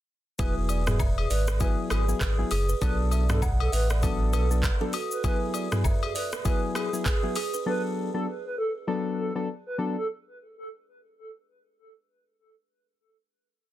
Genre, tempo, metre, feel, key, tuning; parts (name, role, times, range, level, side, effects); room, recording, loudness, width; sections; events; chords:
afrobeats; 99 BPM; 4/4; swing 58% on 16ths; B dorian; A4 = 440 Hz
hollow clarinet-like synth lead; melody; 0.4-10.1 s; G#4 to B4; -34 LUFS; right 1 dB; chorus, digital delay
soft electric-piano-like synth keys; accompaniment; 0.4-10.0 s; F#3 to A4; -30 LUFS; left 3 dB; chorus
buzzing kalimba; riff; 0.4-7.6 s; F#4 to F#5; -36 LUFS; right 5 dB; digital delay
sub bass with octave; bass; 0.4-4.7 s; E1 to B1; -26 LUFS; equal
afro-pop drum kit; drums; 0.4-7.7 s; handclaps, hi-hat, kick drum, rim click, shaker, toms; -28 LUFS; equal
agogo bells and woodblock; percussion; 0.4-7.5 s; -36 LUFS; left 9 dB
light reverb; dense, heavily limited modern master; -24 LUFS; side -14 dB against mid
0.4-10.1 chorus
0.4 Eadd9; 2.8 Bm7; 5.2 Eadd9; 7.7 Bm7